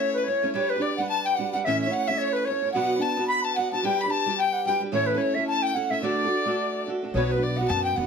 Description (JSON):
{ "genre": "celtic folk", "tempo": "219 BPM", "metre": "4/4", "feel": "swing 58% on 8ths", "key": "unclear", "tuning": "A4 = 439 Hz", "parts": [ { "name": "bright wooden flute", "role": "melody", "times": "0.0-8.1 s", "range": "B4 to B5", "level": "-25 LUFS", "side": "left 1 dB", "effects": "none" }, { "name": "clear fiddle", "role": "second line", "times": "0.0-8.1 s", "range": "B4 to B5", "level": "-32 LUFS", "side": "left 6 dB", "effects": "none" }, { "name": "picked steel-string acoustic guitar", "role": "accompaniment", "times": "0.0-8.1 s", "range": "A2 to C#5", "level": "-28 LUFS", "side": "right 3 dB", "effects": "none" }, { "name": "upright bass", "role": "bass", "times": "7.1-8.1 s", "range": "B1 to F#2", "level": "-27 LUFS", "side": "left 1 dB", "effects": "none" } ], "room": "moderate studio reverb, RT60 0.6 s", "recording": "none", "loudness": "-22 LUFS", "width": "side -6 dB against mid", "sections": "0.0-7.1 A section", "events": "none", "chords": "0.0 A; 0.6 G; 1.7 A; 2.7 Bm; 3.8 G; 4.9 A; 6.0 D; 7.1 Bm" }